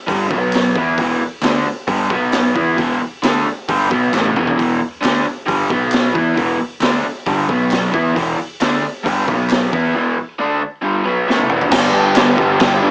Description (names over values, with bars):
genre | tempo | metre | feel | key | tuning
garage rock duo or trio | 134 BPM | 4/4 | straight | unclear | A4 = 440 Hz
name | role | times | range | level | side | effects
crunchy overdriven guitar | riff | 0.1-12.9 s | E2 to G4 | -15 LUFS | equal | none
growling picked electric bass | bass | 0.1-12.9 s | E1 to G2 | -24 LUFS | equal | overdrive
raw garage drum kit | drums | 0.1-12.7 s | crash cymbal, hi-hat, kick drum, snare drum, toms | -19 LUFS | equal | cassette tape
group handclap | percussion | 0.5-12.3 s | none | -27 LUFS | equal | none
room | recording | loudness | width
light reverb | home recording on cassette, small speaker sound | -14 LUFS | side -28 dB against mid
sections
0.0-11.7 A section; 11.7-12.9 B section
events
drum fill 4.1-4.6, 11.3-11.7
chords
0.3 B5; 0.8 E5; 2.1 B5; 2.6 E5; 5.7 B5; 6.2 E5; 7.5 B5; 7.9 E5; 9.3 B5; 9.7 E5; 11.7 G